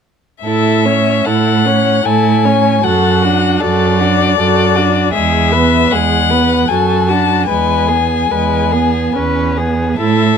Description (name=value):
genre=classical, slow romantic movement for string quartet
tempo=70-79 BPM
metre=3/4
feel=rubato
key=A major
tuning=A4 = 440 Hz
part: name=rich violin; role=melody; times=0.4-10.4 s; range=D5 to A5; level=-15 LUFS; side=left 11 dB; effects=none
part: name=rich viola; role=accompaniment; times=0.4-10.4 s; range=G#3 to F#4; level=-17 LUFS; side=right 4 dB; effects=none
part: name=rich cello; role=bass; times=0.4-10.4 s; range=E2 to A2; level=-15 LUFS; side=right 6 dB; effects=none
part: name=warm violin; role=second line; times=0.5-10.4 s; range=F#4 to C#5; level=-18 LUFS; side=left 4 dB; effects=none
room=light reverb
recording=close, detailed microphones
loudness=-10 LUFS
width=side -7 dB against mid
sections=0.4-10.4 A section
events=none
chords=0.4 A; 2.8 D/F#; 5.2 E; 6.7 D/F#; 7.5 E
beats=| 0.44 1.26 2.05 | 2.84 3.62 4.38 | 5.16 5.92 6.70 | 7.50 8.31 9.15 | 9.99